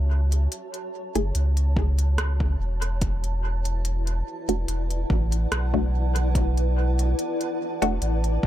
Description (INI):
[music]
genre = ambient dub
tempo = 72 BPM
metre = 4/4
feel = straight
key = unclear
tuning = A4 = 442 Hz
[part]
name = granular cloud pad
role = sustained chords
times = 0.0-8.5 s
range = E4 to A5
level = -31 LUFS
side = equal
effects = built-in reverb
[part]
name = warm sub bass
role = bass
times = 0.0-8.5 s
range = E1 to C#2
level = -22 LUFS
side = equal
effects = none
[part]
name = organic electronic drum kit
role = drums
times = 0.3-8.4 s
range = hi-hat, rim click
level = -33 LUFS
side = right 1 dB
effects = dub echo
[part]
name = filtered dub chord stab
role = stabs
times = 1.2-8.0 s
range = A3 to G#4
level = -27 LUFS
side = left 1 dB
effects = phaser, dub echo
[part]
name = electronic kick drum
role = drums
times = 1.8-8.5 s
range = none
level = -26 LUFS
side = equal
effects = overdrive
[sound]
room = little or no reverb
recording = echo-heavy mix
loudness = -22 LUFS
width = side -12 dB against mid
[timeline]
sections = 0.0-8.5 A section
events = fade-in on ambient pad 0.0-8.5; filter sweep on synth stab 0.0-8.5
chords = 0.0 F#m7; 3.0 E7sus4